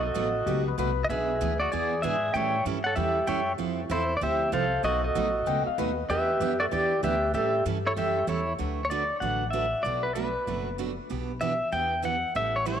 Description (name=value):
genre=country, western swing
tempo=192 BPM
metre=4/4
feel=swing 63% on 8ths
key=unclear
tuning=A4 = 441 Hz
part: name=pedal steel guitar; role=melody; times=0.0-12.8 s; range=E4 to G5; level=-27 LUFS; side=left 1 dB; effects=tape echo
part: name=mellow clarinet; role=second line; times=0.0-8.5 s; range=G4 to E5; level=-35 LUFS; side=right 8 dB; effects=none
part: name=picked steel-string acoustic guitar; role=accompaniment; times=0.0-12.8 s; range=B2 to B4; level=-33 LUFS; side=right 9 dB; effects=none
part: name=upright bass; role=bass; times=0.0-12.8 s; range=F#1 to A2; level=-33 LUFS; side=left 2 dB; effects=none
part: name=clean lap steel guitar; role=second line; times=0.5-1.0, 5.5-6.0 s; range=G4 to G5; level=-33 LUFS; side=left 13 dB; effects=none
room=moderate plate reverb, RT60 2.9 s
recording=1960s-style stereo with parts hard left and right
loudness=-25 LUFS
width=side -9 dB against mid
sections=0.0-8.6 A section; 8.6-12.8 B section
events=none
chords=0.0 B7; 1.1 E7/B; 2.3 A7; 3.6 Fmaj9; 4.8 B7; 6.1 Em7; 7.3 A7; 8.6 D6; 9.8 Bm7; 11.1 Em9/B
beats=0.16 0.47 0.79 | 1.10 1.41 1.72 2.03 | 2.35 2.66 2.97 3.28 | 3.60 3.91 4.22 4.53 | 4.84 5.16 5.47 5.78 | 6.09 6.41 6.72 7.03 | 7.34 7.66 7.97 8.28 | 8.59 8.91 9.22 9.53 | 9.85 10.16 10.47 10.79 | 11.10 11.41 11.72 12.04 | 12.35 12.66